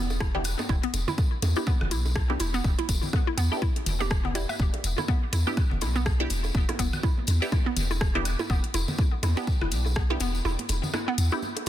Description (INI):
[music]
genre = minimal techno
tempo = 123 BPM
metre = 4/4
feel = swing 58% on 16ths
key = E minor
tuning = A4 = 439 Hz
[part]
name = punchy sub bass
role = bass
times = 0.0-11.7 s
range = E1 to E2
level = -27 LUFS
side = equal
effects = tube saturation, sidechain pumping
[part]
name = bongos, congas and woodblock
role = percussion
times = 0.1-11.7 s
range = none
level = -36 LUFS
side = right 2 dB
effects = studio reverb, dub echo
[part]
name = tambourine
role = percussion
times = 0.1-11.7 s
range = none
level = -38 LUFS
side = left 4 dB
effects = none
[part]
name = hollow square pluck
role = riff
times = 0.2-11.7 s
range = B3 to E5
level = -32 LUFS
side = equal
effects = chorus, sidechain pumping, ping-pong delay
[part]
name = electronic kick drum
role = drums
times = 0.2-10.1 s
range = none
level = -25 LUFS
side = equal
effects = overdrive, studio reverb
[part]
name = house drum kit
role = drums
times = 0.2-11.7 s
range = hi-hat, rim click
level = -34 LUFS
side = left 2 dB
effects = overdrive, studio reverb
[part]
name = filtered dub chord stab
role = stabs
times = 0.3-11.4 s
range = B3 to G4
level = -34 LUFS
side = right 1 dB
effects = phaser, dub echo
[sound]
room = little or no reverb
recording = dense, heavily limited modern master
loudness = -24 LUFS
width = side -12 dB against mid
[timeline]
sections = 0.0-11.7 A section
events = kick drops out 10.4-11.7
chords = 0.0 Em7